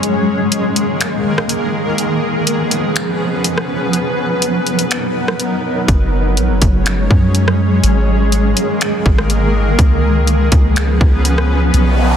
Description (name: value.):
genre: hip hop, atmospheric cloud-rap.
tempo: 123 BPM.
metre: 4/4.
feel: half-time.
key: unclear.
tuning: A4 = 440 Hz.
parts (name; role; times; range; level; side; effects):
granular cloud pad; sustained chords; 0.0-12.2 s; D#3 to C#5; -16 LUFS; equal; built-in reverb, sidechain pumping.
trap drum kit; drums; 0.0-11.9 s; finger snaps, hi-hat, kick drum, rim click; -16 LUFS; equal; overdrive, soft clipping on snare.
soft 808-style bass; bass; 5.9-12.2 s; F#1 to F#2; -14 LUFS; equal; none.
noise sweep; sound effects; 11.8-12.2 s; none; -19 LUFS; right 7 dB; none.
room: digital ambience.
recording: dense, heavily limited modern master.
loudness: -12 LUFS.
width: side -8 dB against mid.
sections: 0.0-12.2 A section.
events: break 0.0-5.9; noise sweep 11.8-12.2.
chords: 0.0 G#sus2; 2.0 C#7; 3.9 Bmaj7; 5.9 F#sus2; 7.8 G#sus2; 9.8 C#7.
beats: | 0.03 0.52 1.01 1.49 | 1.98 2.47 2.96 3.45 | 3.93 4.42 4.91 5.40 | 5.88 6.37 6.86 7.35 | 7.84 8.32 8.81 9.30 | 9.79 10.28 10.76 11.25 | 11.74.